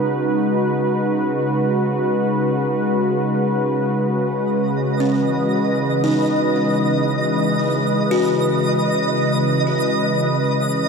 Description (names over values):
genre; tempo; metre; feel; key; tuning
ambient; free time; none; none; C# minor; A4 = 436 Hz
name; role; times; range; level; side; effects
warm analog pad; sustained chords; 0.0-10.9 s; C#3 to B4; -18 LUFS; equal; chorus
twinkling granular texture; texture; 4.8-10.9 s; D#5; -23 LUFS; equal; built-in reverb
buzzing kalimba; arpeggios; 5.0-10.9 s; C#4 to F#4; -23 LUFS; left 2 dB; ping-pong delay
room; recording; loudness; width
wet huge ambient reverb, RT60 8.6 s; none; -17 LUFS; side -5 dB against mid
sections
0.0-10.9 A section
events
none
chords
0.0 B6/C#; 4.0 C#m9